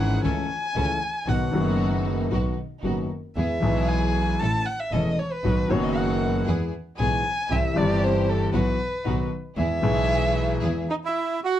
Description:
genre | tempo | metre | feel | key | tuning
tango | 116 BPM | 4/4 | rubato | E major | A4 = 443 Hz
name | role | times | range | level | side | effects
dark violin | second line | 0.0-11.6 s | D#4 to A5 | -27 LUFS | equal | none
warm concert grand piano | accompaniment | 0.0-10.8 s | E1 to A4 | -25 LUFS | left 2 dB | none
rich symphonic string section | stabs | 0.0-10.8 s | B3 to A4 | -34 LUFS | right 2 dB | none
clear double bass | bass | 0.0-10.8 s | E1 to E2 | -27 LUFS | right 2 dB | none
bandoneon | melody | 10.9-11.6 s | D#4 to F#5 | -25 LUFS | right 5 dB | none
room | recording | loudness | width
moderate studio reverb, RT60 0.5 s | dark, warm production | -22 LUFS | side -11 dB against mid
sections
0.0-11.6 A section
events
violin solo 0.0-11.6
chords
0.2 A/C#; 1.3 B; 3.4 E; 4.4 A; 5.4 B; 6.5 E; 7.5 C; 8.5 Bsus4; 9.0 B; 9.6 E

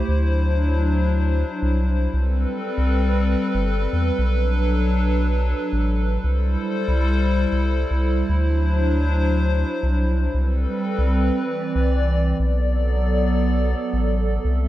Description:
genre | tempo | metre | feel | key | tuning
IDM | 117 BPM | 4/4 | straight | B phrygian | A4 = 439 Hz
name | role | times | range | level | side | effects
hollow soft pad | sustained chords | 0.0-14.7 s | E3 to E5 | -22 LUFS | equal | chorus, vintage 12-bit sampler grit
round analog bass | bass | 0.0-14.7 s | G1 to E2 | -20 LUFS | equal | tube saturation
room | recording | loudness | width
little or no reverb | none | -18 LUFS | side -14 dB against mid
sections
0.0-12.4 A section; 12.4-14.7 A section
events
none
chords
0.1 D9; 2.1 Am9/C; 4.2 Bm7; 6.2 C6; 8.3 D9; 10.3 Am9/C; 11.4 Cmaj9; 12.4 Bm7

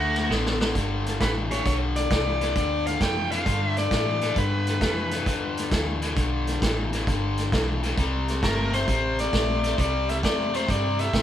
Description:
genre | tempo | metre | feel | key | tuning
electric blues shuffle | 133 BPM | 4/4 | swing 68% on 8ths | G mixolydian | A4 = 445 Hz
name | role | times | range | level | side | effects
overdriven electric guitar | melody | 0.0-5.7, 8.4-11.2 s | F#4 to G5 | -27 LUFS | left 1 dB | none
cranked stack guitar | riff | 0.0-11.2 s | G2 to B3 | -28 LUFS | left 4 dB | overdrive
vintage muted fingered electric bass | bass | 0.0-11.2 s | G1 to A2 | -28 LUFS | right 1 dB | none
vintage drum kit | drums | 0.2-11.2 s | hi-hat, kick drum, ride cymbal, snare drum | -27 LUFS | right 1 dB | none
room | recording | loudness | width
moderate small room ambience, RT60 0.5 s | band playing live in one room | -22 LUFS | side -10 dB against mid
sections
0.8-11.2 A section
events
drum fill 0.3-0.8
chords
0.0 D; 0.8 G7; 8.0 C7

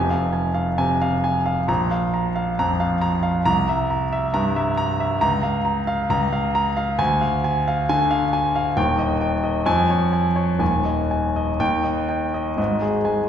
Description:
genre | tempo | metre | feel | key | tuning
classical, virtuoso piano study | 118-140 BPM | 4/4 | rubato | unclear | A4 = 440 Hz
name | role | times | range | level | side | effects
warm concert grand piano | solo | 0.0-13.3 s | Eb1 to Bb5 | -18 LUFS | equal | none
room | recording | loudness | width
wet recital hall reverb, RT60 1.4 s | recorded in a church or concert hall | -19 LUFS | side -9 dB against mid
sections
0.0-12.6 A section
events
none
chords
0.0 Fm; 1.7 Bb5; 3.5 C7; 5.2 Bbm/Db; 7.0 Ddim; 8.8 Eb; 9.7 Db/F; 10.6 Ab5/Eb; 11.6 Eb; 12.6 Ab5

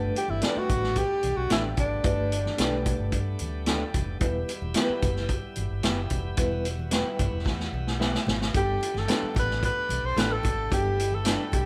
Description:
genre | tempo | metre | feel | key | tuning
uptempo 1960s-style soul | 111 BPM | 4/4 | straight | G major | A4 = 441 Hz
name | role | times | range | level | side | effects
mellow reed electric piano | accompaniment | 0.0-11.7 s | G3 to B4 | -35 LUFS | equal | fast tremolo
bright tonewheel organ | sustained chords | 0.0-11.7 s | G3 to G4 | -42 LUFS | equal | overdrive, slow rotary speaker
vintage muted fingered electric bass | bass | 0.0-11.6 s | E1 to G2 | -33 LUFS | equal | none
breathy tenor saxophone | melody | 0.2-3.4, 8.6-11.7 s | D4 to C5 | -31 LUFS | equal | none
vintage drum kit | drums | 0.2-11.7 s | hi-hat, kick drum, snare drum | -30 LUFS | equal | none
congas | percussion | 0.2-11.7 s | none | -42 LUFS | equal | none
electric guitar through a small old amp | stabs | 0.4-11.4 s | A3 to B4 | -37 LUFS | equal | spring reverb
room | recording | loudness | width
moderate large studio reverb, RT60 0.9 s | band playing live in one room | -27 LUFS | mono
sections
0.0-11.7 A section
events
drum fill 7.5-8.5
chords
0.0 Gadd9; 4.2 Em; 8.5 Gadd9

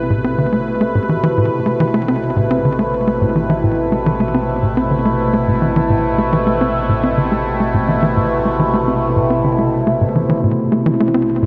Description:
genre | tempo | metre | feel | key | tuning
ambient, sequencer-driven space music | 106 BPM | 4/4 | straight | A minor | A4 = 442 Hz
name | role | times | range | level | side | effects
sweeping resonant pad | sustained chords | 0.0-11.5 s | B2 to C5 | -19 LUFS | equal | chorus, phaser
warm sub bass | bass | 0.0-11.5 s | A1 | -32 LUFS | equal | tube saturation
tight sequencer bass | riff | 0.1-11.5 s | A2 to C4 | -20 LUFS | equal | delay
room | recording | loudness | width
wet plate reverb, RT60 3.5 s | nothing above 10.8 kHz | -16 LUFS | mono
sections
0.0-11.5 A section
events
none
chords
0.0 Amadd9

